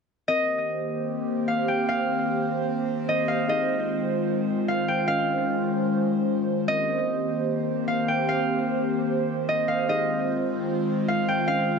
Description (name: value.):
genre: hip hop.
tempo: 150 BPM.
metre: 4/4.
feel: half-time.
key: unclear.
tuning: A4 = 440 Hz.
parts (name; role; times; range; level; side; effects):
concert harp; melody; 0.3-11.8 s; Eb5 to G5; -26 LUFS; right 1 dB; low-pass filter, analog delay.
airy breathy pad; sustained chords; 0.3-11.8 s; Eb3 to C5; -25 LUFS; equal; chorus.
small celesta; texture; 0.3-11.8 s; C4 to F5; -37 LUFS; left 3 dB; none.
room: moderate echo chamber reverb, RT60 1.2 s, studio reverb.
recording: echo-heavy mix.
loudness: -23 LUFS.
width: side -5 dB against mid.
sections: 0.3-11.8 A section.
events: none.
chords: 0.3 Cm7; 3.5 Fm7; 5.1 Dbmaj9; 6.7 Cm7; 9.9 Fm7.